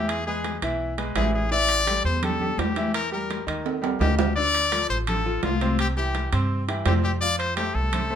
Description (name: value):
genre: latin, salsa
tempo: 168 BPM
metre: 4/4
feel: straight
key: unclear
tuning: A4 = 440 Hz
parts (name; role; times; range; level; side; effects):
- brilliant trumpet; melody; 0.0-8.2 s; F4 to D5; -25 LUFS; left 3 dB; none
- bright grand piano; accompaniment; 0.0-8.2 s; C3 to F5; -30 LUFS; equal; none
- upright bass; bass; 0.0-8.2 s; A1 to G2; -27 LUFS; right 1 dB; none
- congas; percussion; 0.1-8.2 s; none; -32 LUFS; left 3 dB; none
- timbales; percussion; 0.1-8.1 s; none; -29 LUFS; right 6 dB; none
room: light reverb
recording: minimal, uncompressed stereo recording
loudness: -21 LUFS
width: side -8 dB against mid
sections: 0.0-8.2 A section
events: drum fill 3.7-4.4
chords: 0.1 E; 1.5 A5; 2.9 Edim; 3.7 Eb7; 4.4 Dm7; 5.8 C; 7.2 F